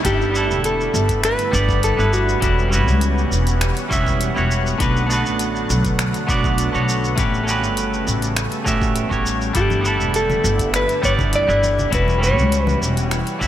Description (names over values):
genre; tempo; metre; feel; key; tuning
sunset chillout; 101 BPM; 4/4; straight; unclear; A4 = 438 Hz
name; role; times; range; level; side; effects
clean electric guitar; accompaniment; 0.0-13.5 s; G3 to E5; -22 LUFS; moving between left 4 dB and right 4 dB; auto-pan, digital delay
lush unison pad; sustained chords; 0.0-13.5 s; C#3 to F#5; -26 LUFS; equal; chorus
upright bass; bass; 0.0-13.5 s; E1 to C#2; -20 LUFS; equal; none
deep house drum kit; drums; 0.0-13.5 s; finger snaps, hi-hat, shaker; -27 LUFS; equal; none
electronic kick drum; drums; 0.0-13.5 s; none; -24 LUFS; equal; none
mellow electric guitar; melody; 0.1-3.0, 9.6-12.8 s; F#4 to D5; -21 LUFS; equal; tape echo
congas; percussion; 9.7-12.8 s; none; -29 LUFS; left 2 dB; none
room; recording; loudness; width
light reverb; none; -16 LUFS; side -12 dB against mid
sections
0.0-13.5 A section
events
none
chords
0.0 G69; 2.4 Em69; 4.8 Bm7; 7.2 A13; 9.6 G69; 11.9 Em69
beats
| 0.05 0.64 1.24 1.83 | 2.42 3.02 3.61 4.21 | 4.80 5.39 5.99 6.58 | 7.18 7.77 8.36 8.96 | 9.55 10.15 10.74 11.33 | 11.93 12.52 13.12